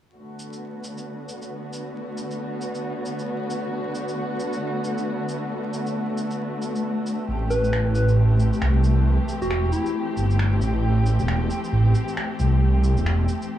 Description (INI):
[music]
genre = future garage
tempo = 135 BPM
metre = 4/4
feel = swing 60% on 16ths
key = B phrygian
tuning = A4 = 440 Hz
[part]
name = dark chamber string section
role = sustained chords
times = 0.2-13.6 s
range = D3 to G4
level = -27 LUFS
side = equal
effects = none
[part]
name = electronic shaker and finger snaps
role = drums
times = 0.4-13.5 s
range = none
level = -36 LUFS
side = equal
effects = none
[part]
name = swelling detuned saw bass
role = bass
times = 7.3-13.3 s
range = E1 to C2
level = -19 LUFS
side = equal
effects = none
[part]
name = soft struck synth lead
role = melody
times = 7.5-10.1 s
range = E4 to B4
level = -30 LUFS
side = left 1 dB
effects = chorus, tape echo
[sound]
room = light reverb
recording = vinyl crackle, small room reverb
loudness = -21 LUFS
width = side -12 dB against mid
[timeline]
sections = 0.2-13.6 A section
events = none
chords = 0.2 Bm7; 7.3 Am7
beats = | 0.17 0.62 1.06 1.51 | 1.95 2.40 2.84 3.28 | 3.73 4.17 4.62 5.06 | 5.51 5.95 6.39 6.84 | 7.28 7.73 8.17 8.62 | 9.06 9.51 9.95 10.39 | 10.84 11.28 11.73 12.17 | 12.62 13.06 13.51